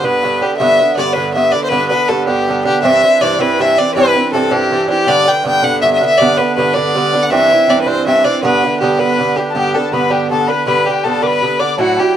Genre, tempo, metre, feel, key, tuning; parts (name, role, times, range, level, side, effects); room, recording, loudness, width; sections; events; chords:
celtic folk; 107 BPM (dotted quarters); 6/8; straight; G major; A4 = 438 Hz
clear fiddle; melody; 0.0-12.2 s; F#4 to G5; -13 LUFS; left 2 dB
Irish bouzouki; accompaniment; 0.0-12.2 s; G2 to E4; -15 LUFS; right 4 dB
tin whistle; second line; 9.5-12.2 s; F#5 to D6; -20 LUFS; left 9 dB
studio reverb; dry, close 1970s-style studio recording; -11 LUFS; side -10 dB against mid
0.6-9.5 A section; 9.5-12.2 B section
0.0 G; 2.8 Cadd9; 5.1 G; 7.3 Cadd9; 8.4 G